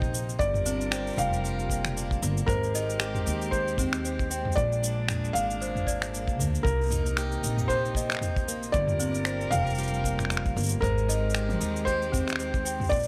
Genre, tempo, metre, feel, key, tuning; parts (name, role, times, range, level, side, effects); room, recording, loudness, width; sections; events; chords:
folktronica; 115 BPM; 4/4; swing 56% on 16ths; A4 = 440 Hz
felt-muted upright piano; melody; 0.0-13.1 s; Bb4 to F5; -33 LUFS; equal; delay
celesta; second line; 0.0-12.9 s; C4 to G5; -38 LUFS; equal; delay
warm string quartet; sustained chords; 0.0-13.1 s; C3 to Bb4; -40 LUFS; equal
picked plugged-in swing-style acoustic guitar; arpeggios; 0.0-13.1 s; G2 to Ab4; -39 LUFS; equal; delay
upright bass; bass; 0.0-13.1 s; F1 to Eb2; -33 LUFS; equal
kick drum; drums; 0.0-13.0 s; -32 LUFS; equal
organic electronic drum kit; drums; 0.0-13.1 s; finger snaps, shaker, toms; -34 LUFS; equal
light reverb; -28 LUFS; mono
0.0-13.1 A section
0.4 Gm7; 2.5 Abmaj7; 4.6 Bb7; 6.7 Cm7; 8.7 Gm7; 10.8 Abmaj7